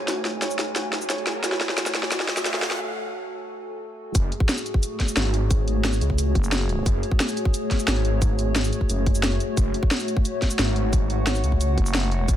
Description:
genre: dark technical drum and bass.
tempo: 177 BPM.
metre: 4/4.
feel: straight.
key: F# minor.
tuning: A4 = 439 Hz.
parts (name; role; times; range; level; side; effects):
dark analog pad; sustained chords; 0.0-12.4 s; A3 to C#5; -32 LUFS; left 1 dB; wide subtle chorus, sidechain pumping.
felt-muted upright piano; arpeggios; 0.0-2.5 s; F#4 to C#5; -33 LUFS; right 2 dB; sidechain pumping, tape echo.
wide detuned saw bass; bass; 0.0-12.4 s; F#1 to C#2; -25 LUFS; equal; chorus, high-pass filter.
riser; sound effects; 0.4-2.8 s; none; -34 LUFS; equal; none.
warbly tape-like pad; texture; 0.0-12.4 s; A3 to G#5; -32 LUFS; equal; chorus, built-in reverb, sidechain pumping.
drum and bass drum kit; drums; 0.1-12.4 s; cabasa, hi-hat, snare drum; -26 LUFS; equal; studio reverb.
electronic kick drum; drums; 4.1-12.4 s; none; -21 LUFS; equal; studio reverb.
growling FM bass; bass; 6.4-6.8, 11.8-12.3 s; F#1; -24 LUFS; equal; none.
room: little or no reverb.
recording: high-pass filter.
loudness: -21 LUFS.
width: side -11 dB against mid.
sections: 0.0-4.1 A section; 4.1-12.4 B section.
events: build-up 0.0-4.1; drum fill 0.0-2.8; filter sweep on analog synth pad 0.0-4.1; filter sweep 0.0-4.1; riser 0.4-2.8; break 2.8-4.1; drop 4.1-12.4.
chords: 0.0 F#madd9.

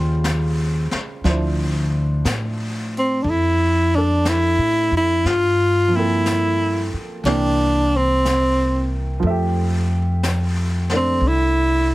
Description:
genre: jazz ballad.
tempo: 60 BPM.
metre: 4/4.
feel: swing 68% on 8ths.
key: F major.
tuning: A4 = 440 Hz.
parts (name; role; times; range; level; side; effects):
clear upright piano; accompaniment; 0.0-11.9 s; Db3 to E5; -26 LUFS; right 2 dB; none.
upright bass; bass; 0.0-11.9 s; C2 to A2; -20 LUFS; equal; none.
vintage brush drum kit; drums; 0.2-11.9 s; brushed snare drum, hi-hat, snare drum; -29 LUFS; left 1 dB; none.
warm tenor saxophone; melody; 3.0-11.9 s; C4 to F4; -18 LUFS; equal; none.
room: little or no reverb.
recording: heavily compressed radio sound.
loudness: -17 LUFS.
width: side -18 dB against mid.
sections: 0.0-11.9 A section.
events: none.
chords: 0.0 Eb13; 1.2 Dm9; 5.3 Gm11; 7.2 C7; 9.2 Fmaj9.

